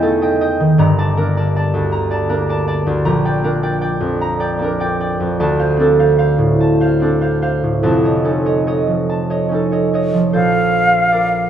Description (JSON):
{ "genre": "classical, impressionist duo for flute and harp", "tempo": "47-54 BPM (dotted quarters)", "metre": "6/8", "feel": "rubato", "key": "Bb major", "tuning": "A4 = 441 Hz", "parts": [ { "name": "concert harp", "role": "accompaniment", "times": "0.0-11.5 s", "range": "F1 to Bb5", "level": "-14 LUFS", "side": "right 1 dB", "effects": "none" }, { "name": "silver concert flute", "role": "melody", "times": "10.3-11.5 s", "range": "F5", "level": "-13 LUFS", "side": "left 1 dB", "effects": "none" } ], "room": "wet recital hall reverb, RT60 1.6 s", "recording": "none", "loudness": "-13 LUFS", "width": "side -9 dB against mid", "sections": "0.0-10.3 A section; 10.3-11.5 B section", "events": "none", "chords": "0.0 F9/E; 0.8 Gmadd9; 3.0 Bb6; 5.4 Dm7; 7.8 Faug7; 10.3 Bbmaj9" }